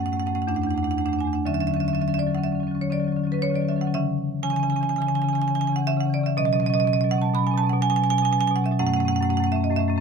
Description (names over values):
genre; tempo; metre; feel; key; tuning
classical, contemporary piece for solo marimba; 122 BPM; 5/4; rubato; unclear; A4 = 441 Hz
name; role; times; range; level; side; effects
marimba with medium hard mallets; solo; 0.0-10.0 s; E2 to B5; -21 LUFS; equal; none
room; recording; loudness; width
light reverb; close, detailed microphones; -21 LUFS; side -6 dB against mid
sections
0.0-10.0 A section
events
none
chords
0.5 E11; 1.4 Dmaj9; 3.9 C#m; 6.4 Badd9; 8.8 F#m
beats
0.47 0.96 | 1.45 1.95 2.44 2.94 3.44 | 3.94 4.43 4.92 5.41 5.90 | 6.38 6.86 7.35 7.83 8.32 | 8.81 9.30 9.79